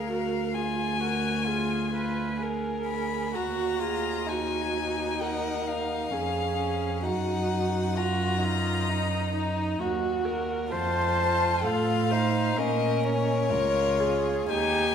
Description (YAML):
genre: classical, slow romantic movement for string quartet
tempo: 64 BPM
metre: 4/4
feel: rubato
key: Eb minor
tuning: A4 = 440 Hz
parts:
  - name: warm violin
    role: melody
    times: 0.0-14.9 s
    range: Db5 to Cb6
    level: -30 LUFS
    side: left 6 dB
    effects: none
  - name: dark violin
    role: second line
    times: 0.0-14.9 s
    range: Db4 to Bb4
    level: -32 LUFS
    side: left 2 dB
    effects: none
  - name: warm viola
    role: accompaniment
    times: 0.0-14.9 s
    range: Eb4 to C5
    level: -30 LUFS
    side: right 3 dB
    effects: none
  - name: warm cello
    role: bass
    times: 0.0-14.9 s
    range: Db2 to Bb2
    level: -30 LUFS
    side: right 3 dB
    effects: none
room: wet scoring stage reverb, RT60 1.8 s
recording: recorded in a church or concert hall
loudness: -25 LUFS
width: side -8 dB against mid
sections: 0.0-14.9 A section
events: none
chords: 0.0 Bb7/D; 3.3 Ebm; 7.1 Ebm/Gb; 10.7 F7; 12.6 Bbm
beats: 0.53 1.47 2.41 | 3.35 4.28 5.21 6.13 | 7.05 7.98 8.90 9.80 | 10.72 11.65 12.58 13.51 | 14.50